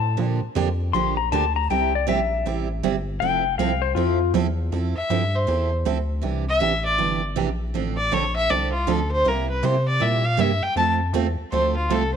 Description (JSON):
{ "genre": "country, western swing", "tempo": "159 BPM", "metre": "4/4", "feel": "swing 63% on 8ths", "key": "F major", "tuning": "A4 = 442 Hz", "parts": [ { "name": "clean lap steel guitar", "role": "second line", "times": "0.0-4.3 s", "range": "F4 to C6", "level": "-24 LUFS", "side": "left 11 dB", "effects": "none" }, { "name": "rubbery square bass", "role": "bass", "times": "0.0-12.2 s", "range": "F1 to C3", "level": "-25 LUFS", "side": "left 1 dB", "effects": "none" }, { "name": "picked steel-string acoustic guitar", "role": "accompaniment", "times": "0.2-12.0 s", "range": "C3 to A4", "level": "-26 LUFS", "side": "right 11 dB", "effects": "none" }, { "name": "rich fiddle", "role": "melody", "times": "5.0-12.2 s", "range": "F4 to A5", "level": "-22 LUFS", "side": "left 1 dB", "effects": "none" } ], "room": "light reverb, small room ambience", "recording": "1960s-style stereo with parts hard left and right", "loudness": "-20 LUFS", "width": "side -7 dB against mid", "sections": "0.0-4.7 A section; 4.7-12.2 A section", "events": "electric slide guitar solo 0.0-4.7; fiddle solo 4.7-12.2", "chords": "0.2 Bb6; 1.7 C; 3.2 Fmaj7; 6.2 Cadd9; 7.7 Dm7; 9.3 C7; 10.8 F" }